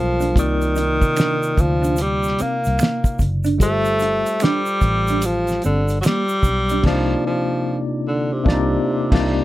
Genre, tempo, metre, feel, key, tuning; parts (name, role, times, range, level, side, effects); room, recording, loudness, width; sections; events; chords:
R&B, neo-soul; 74 BPM; 4/4; swing 63% on 16ths; A4 = 440 Hz
breathy tenor saxophone; melody; 0.0-9.4 s; C3 to Bb3; -20 LUFS; equal
tine electric piano; accompaniment; 0.0-9.4 s; C3 to D5; -24 LUFS; left 2 dB; overdrive, fast stereo tremolo
vintage muted fingered electric bass; bass; 0.0-9.4 s; F#1 to D2; -22 LUFS; equal
mellow electric guitar; second line; 0.2-6.8 s; Bb3 to F4; -25 LUFS; right 4 dB; ensemble chorus
cloth-damped thuddy drum kit; drums; 0.2-9.4 s; crash cymbal, hi-hat, kick drum, snare drum; -19 LUFS; equal
tube shaker and finger snaps; percussion; 0.2-6.8 s; -34 LUFS; right 6 dB
little or no reverb; -16 LUFS; side -16 dB against mid
0.0-9.4 A section
band accent 6.8-9.4; kick muted 8.5-9.4
0.4 Cm11; 3.6 G9sus4; 6.8 Cm11